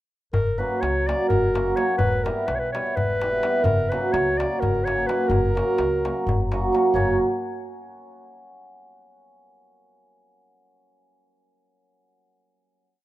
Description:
balkan folk, Balkan wedding band; 254 BPM (eighths); 7/8; straight; F# phrygian dominant; A4 = 441 Hz
mellow clarinet; melody; 0.3-7.2 s; A#4 to D5; -26 LUFS; left 1 dB
upright bass; bass; 0.3-7.2 s; E1 to C#2; -29 LUFS; equal
darbuka; percussion; 0.3-7.2 s; -27 LUFS; left 1 dB
cimbalom; accompaniment; 0.6-7.2 s; F#3 to G4; -23 LUFS; right 2 dB
light reverb; rough home demo mix; -20 LUFS; side -15 dB against mid
0.3-7.0 A section; 7.0-8.6 final chord
0.3 F#; 2.0 Em; 3.6 F#

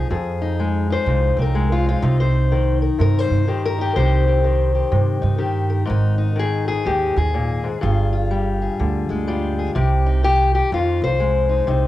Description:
acoustic country blues, solo or duo; 124 BPM; 4/4; swing 63% on 8ths; C minor; A4 = 440 Hz
fingerpicked steel-string acoustic guitar; melody; 0.0-11.9 s; F2 to C5; -20 LUFS; left 4 dB; cassette tape
upright bass; bass; 0.1-11.9 s; G1 to G2; -19 LUFS; right 2 dB
small room ambience; home recording on cassette; -17 LUFS; side -14 dB against mid
0.0-11.9 A section
0.0 Fm7; 2.0 Cm7; 5.9 Ab5; 7.8 G5; 9.8 Cm; 10.7 Fm7

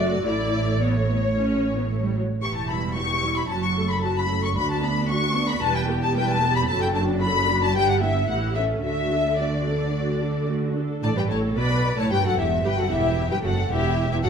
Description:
quick classical-period movement for string orchestra; 112 BPM; 4/4; straight; A4 = 440 Hz
rich studio violin section; melody; 0.0-14.3 s; C#5 to C#6; -26 LUFS; left 5 dB
rich symphonic violin section; second line; 0.0-14.3 s; G4 to C#6; -30 LUFS; left 3 dB
warm symphonic viola section; accompaniment; 0.0-14.3 s; E3 to B4; -27 LUFS; right 1 dB
rich symphonic cello section; bass; 0.0-14.3 s; D2 to D3; -27 LUFS; right 2 dB
rich symphonic double bass section; bass; 0.0-14.3 s; E1 to D2; -27 LUFS; right 3 dB
wet recital hall reverb, RT60 1.3 s; -20 LUFS; side -7 dB against mid
0.0-11.0 A section; 11.0-14.3 B section
0.3 A; 2.4 Em6; 3.5 F#m; 4.6 Bm/D; 5.6 Em; 6.7 D/F#; 7.8 Em/G; 8.3 A7; 8.8 D; 11.0 A7sus2; 12.1 Emadd9

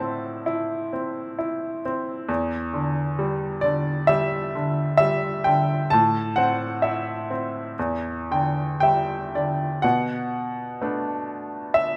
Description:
classical, lyrical solo piano; 56-68 BPM; 4/4; rubato; E minor; A4 = 440 Hz
bright upright piano; solo; 0.0-12.0 s; E2 to A5; -24 LUFS; equal
moderate recital hall reverb, RT60 1.4 s; -24 LUFS; mono
0.0-9.8 A section; 9.8-12.0 B section
upright piano fill 7.8-9.8
0.0 Am; 2.3 Em7; 5.9 Am; 7.8 Em7; 9.8 Bm7

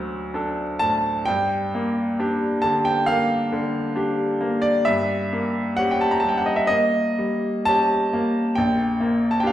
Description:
classical, romantic nocturne for solo piano; 58-72 BPM; 4/4; rubato; G minor; A4 = 440 Hz
bright baby grand piano; solo; 0.0-9.5 s; Bb1 to Bb5; -19 LUFS; equal
wet recital hall reverb, RT60 1.5 s; heard from further back in the room; -19 LUFS; side -12 dB against mid
0.0-9.5 A section
0.0 D; 1.3 Gm; 4.9 Gdim7; 8.6 Gm/Bb

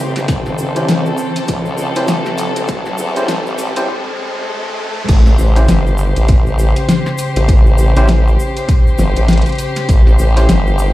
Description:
glitch hop; 100 BPM; 4/4; swing 59% on 16ths; A minor; A4 = 440 Hz
dark chamber string section; sustained chords; 0.0-10.9 s; C#3 to B#4; -21 LUFS; left 2 dB; sidechain pumping
formant-sweep wobble bass; bass; 0.0-10.9 s; G1 to E2; -14 LUFS; equal; chorus, tube saturation, high-pass filter
riser; sound effects; 0.0-5.1 s; -24 LUFS; right 1 dB
granular cloud pad; texture; 0.0-3.9 s; B#4 to G5; -30 LUFS; equal
pop drum kit; drums; 0.2-10.6 s; crash cymbal, hi-hat, snare drum; -18 LUFS; left 1 dB
egg shaker; percussion; 0.2-10.9 s; -35 LUFS; right 2 dB
electronic kick drum; drums; 0.3-10.0 s; -11 LUFS; equal
overdriven tine electric piano; stabs; 0.8-10.5 s; C#4 to B#4; -21 LUFS; equal; vintage 12-bit sampler grit, sidechain pumping, digital delay
light reverb; played on a big sound system in a bare room, large studio reverb, vinyl crackle, high-pass filter; -11 LUFS; side -16 dB against mid
0.0-5.1 A section; 5.1-10.9 B section
build-up 0.0-5.1; riser 0.0-5.1; filter sweep 0.0-5.1; break 3.9-5.1; drop 5.1-10.9
0.0 A7#9

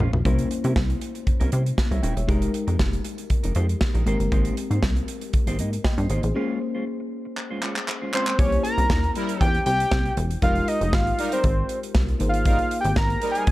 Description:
early-eighties boogie funk; 118 BPM; 4/4; straight; A4 = 440 Hz
mellow FM electric piano; accompaniment; 0.0-13.5 s; Ab3 to G5; -30 LUFS; left 3 dB; chorus
mellow electric guitar; riff; 0.0-8.3 s; G3 to Eb5; -33 LUFS; right 2 dB; wide subtle chorus
plucky analog bass; bass; 0.0-13.5 s; Eb1 to C3; -24 LUFS; equal
modern studio drum kit; drums; 0.0-13.5 s; handclaps, hi-hat, kick drum, snare drum, toms; -24 LUFS; equal
fat analog lead; melody; 8.1-13.5 s; C5 to Bb5; -24 LUFS; equal; slapback echo
analog synth brass; second line; 8.4-13.4 s; E3 to Bb4; -30 LUFS; equal; chorus
studio reverb; dark, warm production; -20 LUFS; side -17 dB against mid
0.3-8.4 A section; 8.4-13.5 B section
drum fill 0.0, 7.4-8.4; break 6.4-8.4
0.3 C7b9; 2.3 Fm11; 4.1 Abmaj9; 6.4 Bbm9; 8.4 C7b9; 10.4 Fm11; 12.2 Abmaj9

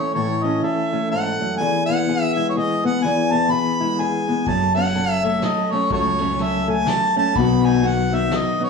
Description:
acoustic folk duo or small band; 125 BPM; 3/4; swing 58% on 8ths; E major; A4 = 441 Hz
clear harmonica; melody; 0.0-8.7 s; C#5 to B5; -22 LUFS; equal; plate reverb
fingerpicked old ladder-braced acoustic guitar; accompaniment; 0.0-8.7 s; E2 to F#4; -22 LUFS; left 6 dB
clean electric guitar; arpeggios; 0.0-8.7 s; E3 to A4; -24 LUFS; right 2 dB; tremolo, tape echo
upright bass; bass; 4.5-8.3 s; F#1 to C#2; -26 LUFS; left 2 dB
soft brush drum kit; drums; 4.5-8.4 s; kick drum, ride cymbal, snare drum; -31 LUFS; left 2 dB
moderate studio reverb, RT60 0.7 s; worn, warbling old tape, cassette tape, warbly pitch drift, studio ambience; -17 LUFS; side -4 dB against mid
0.0-8.7 A section
0.0 A; 1.6 E; 4.5 F#m; 7.4 B

